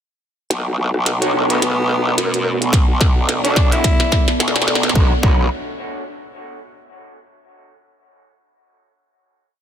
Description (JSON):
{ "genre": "glitch hop", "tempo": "108 BPM", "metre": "4/4", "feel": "swing 56% on 16ths", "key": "B minor", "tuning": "A4 = 440 Hz", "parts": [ { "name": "dark analog pad", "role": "sustained chords", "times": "1.2-5.2 s", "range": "B3 to D5", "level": "-26 LUFS", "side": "right 2 dB", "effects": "chorus, vintage 12-bit sampler grit, sidechain pumping" }, { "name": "growl bass", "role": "bass", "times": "0.5-5.5 s", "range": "B1 to F#2", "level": "-19 LUFS", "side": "equal", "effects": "chorus, tube saturation, high-pass filter" }, { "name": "glitchy drum kit", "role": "drums", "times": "0.5-5.0 s", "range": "hi-hat, rim click, snare drum", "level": "-21 LUFS", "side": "equal", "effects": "high-pass filter on snare, studio reverb, high-pass filter on hats" }, { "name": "electric guitar through a small old amp", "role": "stabs", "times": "1.2-5.4 s", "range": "D4 to C#5", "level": "-26 LUFS", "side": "equal", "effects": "sidechain pumping, dub echo" }, { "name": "growling tenor saxophone", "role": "melody", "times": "1.5-4.3 s", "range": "B3 to E4", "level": "-24 LUFS", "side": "left 1 dB", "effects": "dub echo" }, { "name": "electronic kick drum", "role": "drums", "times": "2.7-5.4 s", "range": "none", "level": "-14 LUFS", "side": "equal", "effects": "studio reverb" } ], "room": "light reverb", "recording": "dense, heavily limited modern master", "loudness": "-14 LUFS", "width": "side -9 dB against mid", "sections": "0.5-5.0 build; 5.0-7.2 final chord", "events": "build-up 0.5-5.0; drum fill 0.5-5.0; filter sweep on analog synth pad 0.5-5.0", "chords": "0.5 Bm7" }